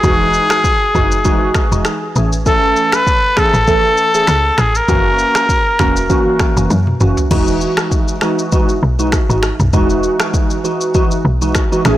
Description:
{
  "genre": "afrobeats",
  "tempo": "99 BPM",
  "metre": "4/4",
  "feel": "swing 55% on 16ths",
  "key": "E major",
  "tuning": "A4 = 444 Hz",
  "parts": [
    { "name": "clear trumpet", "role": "melody", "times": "0.0-6.7 s", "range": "G#4 to B4", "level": "-14 LUFS", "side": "left 1 dB", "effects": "tape echo" },
    { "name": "glassy digital keys", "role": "accompaniment", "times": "0.0-12.0 s", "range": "E3 to A4", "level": "-16 LUFS", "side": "right 1 dB", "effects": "chorus" },
    { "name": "woody log drum bass", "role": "bass", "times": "0.0-12.0 s", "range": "E1 to F#2", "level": "-16 LUFS", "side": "equal", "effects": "none" },
    { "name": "afro-pop drum kit", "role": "drums", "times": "0.0-12.0 s", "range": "crash cymbal, finger snaps, kick drum, rim click, shaker, toms", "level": "-16 LUFS", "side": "equal", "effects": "soft clipping on snare" }
  ],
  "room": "digital ambience",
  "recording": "blown-out, overdriven recording, overdrive",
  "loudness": "-11 LUFS",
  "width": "side -14 dB against mid",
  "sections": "0.0-7.3 A section; 7.3-12.0 B section",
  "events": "drum fill 6.7-7.3",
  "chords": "0.0 Emaj9; 2.2 Amaj7; 4.9 F#7; 7.3 Emaj9"
}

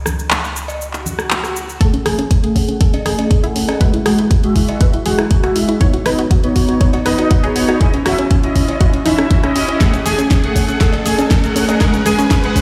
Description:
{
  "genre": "progressive house",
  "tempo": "120 BPM",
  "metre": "4/4",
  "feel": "straight",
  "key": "F# dorian",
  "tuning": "A4 = 445 Hz",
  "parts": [
    { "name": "plucky analog bass", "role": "bass", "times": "0.0-1.8 s", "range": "C#2", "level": "-29 LUFS", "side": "equal", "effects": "sidechain pumping" },
    { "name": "pop drum kit", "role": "drums", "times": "0.1-12.6 s", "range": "handclaps, hi-hat, rim click, shaker, snare drum", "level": "-24 LUFS", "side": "equal", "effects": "none" },
    { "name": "congas and cowbell", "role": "percussion", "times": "0.1-12.2 s", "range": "none", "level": "-29 LUFS", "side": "equal", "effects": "sidechain pumping on perc" },
    { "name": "swell and riser", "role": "sound effects", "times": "1.0-12.6 s", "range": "none", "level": "-31 LUFS", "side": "equal", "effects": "none" },
    { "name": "unison pluck", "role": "arpeggios", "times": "1.8-12.6 s", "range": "C#4 to C#5", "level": "-22 LUFS", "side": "equal", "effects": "cassette tape, sidechain pumping, delay" },
    { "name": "soft supersaw", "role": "stabs", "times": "1.8-12.6 s", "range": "G#3 to G#5", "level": "-20 LUFS", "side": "equal", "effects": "lush chorus, sidechain pumping, low-pass filter, delay" },
    { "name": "electronic kick drum", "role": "drums", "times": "1.8-12.6 s", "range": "none", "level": "-16 LUFS", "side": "equal", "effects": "none" }
  ],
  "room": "light reverb",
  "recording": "played on a big sound system in a bare room, large studio reverb",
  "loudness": "-15 LUFS",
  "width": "mono",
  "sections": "0.0-1.8 A section; 1.8-12.6 B section",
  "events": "swell 1.0-1.8; build-up 1.8-12.6; riser 1.8-12.6; filter sweep on synth pluck 1.8-12.6; filter sweep on supersaw synth 1.8-12.6; drum fill 9.8-12.6",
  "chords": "0.0 N.C.; 1.8 F#madd9; 3.8 Eadd9; 5.8 Badd9; 7.8 C#madd9; 9.8 F#madd9; 11.8 G#7sus4"
}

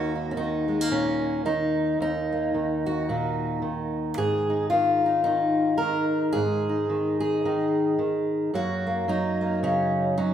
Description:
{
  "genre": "folk, solo fingerstyle acoustic guitar",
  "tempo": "110 BPM",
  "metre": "4/4",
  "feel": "swing 59% on 8ths",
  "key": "Eb minor",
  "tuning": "A4 = 439 Hz",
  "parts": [
    { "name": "fingerpicked steel-string acoustic guitar", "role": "solo", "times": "0.0-10.3 s", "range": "Eb2 to Bb4", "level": "-23 LUFS", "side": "equal", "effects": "none" }
  ],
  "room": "wet recital hall reverb, RT60 1.5 s",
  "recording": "recorded in a church or concert hall",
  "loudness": "-23 LUFS",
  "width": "side -9 dB against mid",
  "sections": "0.0-10.3 A section",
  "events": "none",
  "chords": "0.0 Ebm; 4.2 Ab5; 8.5 Gb"
}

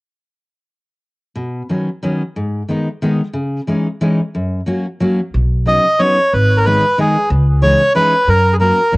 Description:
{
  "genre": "musette",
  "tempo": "182 BPM",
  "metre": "3/4",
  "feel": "swing 54% on 8ths",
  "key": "B major",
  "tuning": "A4 = 440 Hz",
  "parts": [
    { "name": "picked steel-string acoustic guitar", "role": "accompaniment", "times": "1.4-9.0 s", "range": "F#2 to F#4", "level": "-17 LUFS", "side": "left 1 dB", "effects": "cassette tape" },
    { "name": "upright bass", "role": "bass", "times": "5.3-9.0 s", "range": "G#1 to F#2", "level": "-14 LUFS", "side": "equal", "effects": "none" },
    { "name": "bandoneon", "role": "melody", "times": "5.7-8.9 s", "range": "G#4 to D#5", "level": "-12 LUFS", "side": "equal", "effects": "none" }
  ],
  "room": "studio reverb",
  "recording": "home recording on cassette, nothing above 10.7 kHz",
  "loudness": "-13 LUFS",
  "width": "side -24 dB against mid",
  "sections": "1.4-5.3 A section; 5.3-9.0 B section",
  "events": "none",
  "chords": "1.4 Badd9; 2.4 G#m; 3.4 C#madd9; 4.3 F#; 5.3 Badd9; 6.3 G#m; 7.3 C#madd9; 8.3 F#"
}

